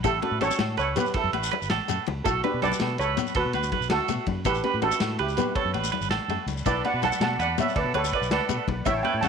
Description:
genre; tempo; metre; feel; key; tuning
highlife guitar band; 109 BPM (dotted quarters); 12/8; straight; D major; A4 = 440 Hz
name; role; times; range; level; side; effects
steel pan; melody; 0.0-9.3 s; E4 to A5; -27 LUFS; right 4 dB; none
fingerpicked steel-string acoustic guitar; accompaniment; 0.0-9.3 s; A3 to G4; -34 LUFS; left 14 dB; none
clean electric guitar; arpeggios; 0.0-9.3 s; A4 to B4; -30 LUFS; right 15 dB; tremolo, tape echo
fingered electric bass; bass; 0.0-9.3 s; G1 to B2; -31 LUFS; left 1 dB; none
vintage drum kit; drums; 0.0-9.3 s; kick drum, ride cymbal, snare drum; -33 LUFS; equal; none
agogo bells; percussion; 0.0-9.3 s; none; -37 LUFS; left 16 dB; none
congas; percussion; 0.0-9.3 s; none; -34 LUFS; left 13 dB; none
shekere; percussion; 0.0-9.3 s; none; -35 LUFS; left 9 dB; none
musette accordion; sustained chords; 6.7-9.3 s; C#5 to B5; -36 LUFS; left 2 dB; none
room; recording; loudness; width
light reverb, studio ambience; 1960s-style stereo with parts hard left and right; -23 LUFS; side -6 dB against mid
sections
0.0-9.3 A section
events
drum fill 6.1-6.7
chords
0.0 A; 2.2 Bm7; 3.4 D6; 4.5 A7; 6.7 Bm7; 7.8 D6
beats
| 0.04 0.59 1.15 1.70 | 2.25 2.80 3.35 3.90 | 4.46 5.01 5.56 6.11 | 6.66 7.21 7.76 8.31 | 8.86

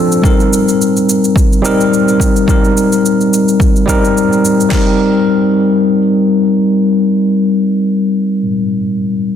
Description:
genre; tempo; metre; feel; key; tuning
sunset chillout; 107 BPM; 4/4; swing 53% on 16ths; C minor; A4 = 441 Hz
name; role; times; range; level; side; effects
tine electric piano; accompaniment; 0.0-9.4 s; F3 to Bb4; -10 LUFS; left 1 dB; auto-pan, low-pass filter, ping-pong delay
shaker; drums; 0.1-4.7 s; none; -21 LUFS; right 2 dB; overdrive, studio reverb
deep house drum kit; drums; 0.2-4.9 s; crash cymbal, kick drum, snare drum; -13 LUFS; equal; overdrive, studio reverb
room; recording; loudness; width
wet concert hall reverb, RT60 2.3 s; dense, heavily limited modern master; -9 LUFS; side -9 dB against mid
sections
0.0-4.7 A section; 4.7-7.0 B section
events
none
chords
0.2 Cm7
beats
| 0.23 0.79 1.35 1.91 | 2.47 3.04 3.60 4.16 | 4.72 5.28 5.84 6.40

